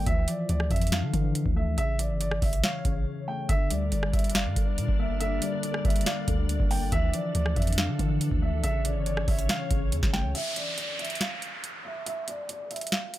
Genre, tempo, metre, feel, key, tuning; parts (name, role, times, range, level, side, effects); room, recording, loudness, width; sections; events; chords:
hip hop, trap; 140 BPM; 4/4; half-time; D harmonic minor; A4 = 440 Hz
dark baby grand piano; melody; 0.0-13.2 s; D5 to G5; -34 LUFS; right 2 dB; low-pass filter, tape echo
mellow tine electric piano; accompaniment; 0.0-10.4 s; C#3 to D5; -32 LUFS; left 4 dB; ensemble chorus, low-pass filter
long sustained 808-style bass; bass; 0.0-10.3 s; G1 to D3; -28 LUFS; equal
booming analog drum machine; drums; 0.1-13.2 s; crash cymbal, hi-hat, kick drum, rim click, snare drum; -28 LUFS; equal
glassy FM pad; sustained chords; 3.5-10.3 s; D3 to D5; -39 LUFS; left 1 dB; ensemble chorus, built-in reverb
downlifter; sound effects; 10.3-13.2 s; -34 LUFS; right 1 dB
little or no reverb; -25 LUFS; side -14 dB against mid
0.0-10.3 A section; 10.3-13.2 B section
break 3.1-3.5, 10.3-13.2
0.1 Dmadd9; 1.8 A; 3.5 Gm; 6.9 Dmadd9; 8.6 A; 10.3 N.C.